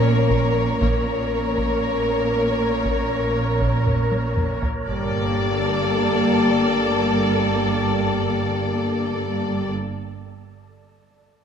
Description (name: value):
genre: cinematic, suspense film score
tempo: 59 BPM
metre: 4/4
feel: straight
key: G minor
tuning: A4 = 439 Hz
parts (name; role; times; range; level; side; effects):
- rich symphonic violin section; melody; 0.0-9.7 s; Db5 to D5; -28 LUFS; left 4 dB; none
- warm symphonic violin section; second line; 0.0-9.7 s; A4 to Bb4; -28 LUFS; left 3 dB; none
- warm symphonic viola section; accompaniment; 0.0-9.7 s; Bb3; -27 LUFS; right 1 dB; none
- warm French horn section; sustained chords; 0.0-9.7 s; Bb3 to Bb4; -26 LUFS; left 5 dB; none
- wind-like tuned noise texture; sustained chords; 0.0-9.7 s; A4 to Bb5; -29 LUFS; right 2 dB; built-in reverb
- clear symphonic cello section; bass; 0.0-9.7 s; G2 to Bb2; -27 LUFS; right 3 dB; none
- dark studio double bass section; bass; 0.0-9.7 s; G1 to Bb1; -26 LUFS; right 3 dB; none
- large celesta; texture; 0.0-4.9 s; none; barely audible; none; none
- solo taiko drums; drums; 0.3-6.9 s; none; -27 LUFS; equal; none
room: moderate scoring stage reverb, RT60 1.9 s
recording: dark, warm production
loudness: -19 LUFS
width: side -7 dB against mid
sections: 0.0-4.9 A section; 4.9-9.0 B section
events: drum fill 3.9-4.9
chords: 0.0 Bbm; 4.9 Gmadd9